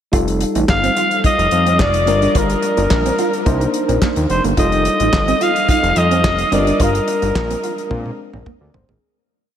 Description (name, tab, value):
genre	early-eighties boogie funk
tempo	108 BPM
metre	4/4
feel	straight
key	unclear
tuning	A4 = 440 Hz
part	tine electric piano	accompaniment	0.1-9.2 s	G3 to D5	-22 LUFS	left 2 dB	medium stereo tremolo
part	mellow electric guitar	riff	0.1-9.0 s	Bb3 to F4	-23 LUFS	right 4 dB	lush chorus
part	fat analog bass	bass	0.1-9.0 s	F1 to Bb2	-19 LUFS	equal	none
part	damped 70s drum kit	drums	0.1-9.0 s	handclaps, hi-hat, kick drum, snare drum, toms	-21 LUFS	equal	none
part	growling alto saxophone	melody	0.7-7.9 s	Bb4 to F5	-17 LUFS	equal	ping-pong delay
room	moderate huge ambient reverb, RT60 7.4 s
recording	dreamy mix soaked in reverb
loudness	-13 LUFS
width	side -9 dB against mid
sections	0.1-9.0 verse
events	fade-out 6.8-9.0; drum fill 7.9-9.0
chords	0.1 F9; 2.1 Gm7; 3.5 Cm9; 4.6 F9; 6.5 Gm7; 7.9 Bb9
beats	| 0.13 0.69 1.24 1.80 | 2.35 2.91 3.46 4.02 | 4.57 5.13 5.68 6.24 | 6.80 7.35 7.91 8.46